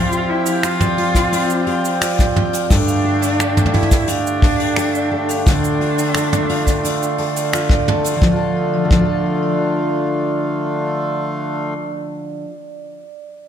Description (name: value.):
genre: folktronica.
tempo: 87 BPM.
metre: 4/4.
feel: straight.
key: D minor.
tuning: A4 = 443 Hz.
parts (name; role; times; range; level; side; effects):
warm cello; melody; 0.0-7.5 s; D4 to F4; -21 LUFS; right 1 dB; vintage 12-bit sampler grit, ping-pong delay.
hand-pumped harmonium; sustained chords; 0.0-11.7 s; D3 to G4; -24 LUFS; left 2 dB; none.
picked steel-string acoustic guitar; arpeggios; 0.0-12.6 s; G2 to A4; -21 LUFS; left 2 dB; ping-pong delay.
flickering grainy texture; texture; 0.0-8.2 s; G5; -33 LUFS; right 1 dB; none.
soft brush drum kit; drums; 0.1-8.2 s; cabasa, finger snaps, hi-hat, toms; -22 LUFS; right 1 dB; none.
vibraphone with hard mallets; second line; 0.5-13.5 s; D5 to F5; -25 LUFS; right 6 dB; ping-pong delay.
kick drum; drums; 1.1-9.1 s; none; -16 LUFS; equal; none.
room: moderate plate reverb, RT60 1.9 s, studio reverb.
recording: dreamy mix soaked in reverb.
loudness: -15 LUFS.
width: side -9 dB against mid.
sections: 0.0-8.2 A section; 8.2-11.0 B section.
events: none.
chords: 0.0 Fsus2; 2.7 Gsus2; 5.5 Dm.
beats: 0.63 1.32 2.01 | 2.70 3.39 4.08 4.77 | 5.46 6.15 6.84 7.53 | 8.22 8.91 9.60 10.29.